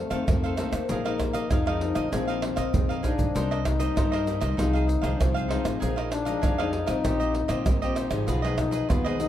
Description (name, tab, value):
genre	samba and choro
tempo	97 BPM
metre	4/4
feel	straight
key	unclear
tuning	A4 = 440 Hz
part	breathy trombone	second line	0.0-9.3 s	A3 to Eb4	-30 LUFS	left 5 dB	none
part	nylon-string guitar	accompaniment	0.0-9.3 s	F2 to F4	-32 LUFS	left 3 dB	none
part	upright bass	bass	0.0-9.3 s	Ab1 to G2	-29 LUFS	equal	none
part	cavaquinho	accompaniment	0.1-9.3 s	Eb4 to F5	-33 LUFS	right 4 dB	none
part	egg shaker, pandeiro, tamborim and surdo	percussion	0.1-9.3 s	none	-28 LUFS	right 2 dB	none
room	moderate large studio reverb, RT60 1.2 s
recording	dark, warm production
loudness	-23 LUFS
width	side -11 dB against mid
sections	0.0-9.3 A section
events	trombone solo 0.0-9.3; drum fill 2.4-3.4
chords	0.0 F7; 0.9 Bb7sus4; 3.4 Cm7; 4.6 Fm7/C; 5.8 Bb7sus4; 7.1 Eb69/Bb; 8.3 Abm6/Cb